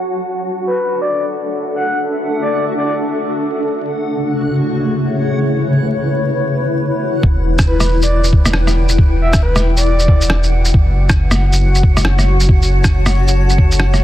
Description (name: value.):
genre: future garage.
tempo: 137 BPM.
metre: 4/4.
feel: swing 63% on 16ths.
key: E dorian.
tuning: A4 = 440 Hz.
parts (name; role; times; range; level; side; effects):
granular cloud pad; sustained chords; 0.0-14.0 s; C#3 to A5; -18 LUFS; left 1 dB; built-in reverb, sidechain pumping.
backwards swelling texture; texture; 0.0-7.2 s; F#4 to F#5; -29 LUFS; left 1 dB; built-in reverb.
breathy flute-like synth lead; melody; 0.7-2.9, 7.7-10.4 s; B4 to F#5; -21 LUFS; left 1 dB; chorus, tape echo.
soft dub sub bass; bass; 7.2-14.0 s; E1 to F#1; -14 LUFS; equal; sidechain pumping.
electronic kick drum; drums; 7.2-13.7 s; none; -12 LUFS; equal; none.
electronic rim click and shaker; drums; 7.6-14.0 s; none; -18 LUFS; equal; soft clipping on snare, low-pass filter on snare, low-pass filter on perc.
room: digital ambience.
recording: dense, heavily limited modern master, vinyl crackle, low-pass filter.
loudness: -12 LUFS.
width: side -13 dB against mid.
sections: 0.0-7.2 A section; 7.2-14.0 B section.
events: filter sweep 0.0-7.2.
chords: 0.2 Dmaj9; 3.7 A/C#; 7.2 Em9; 10.7 F#m7.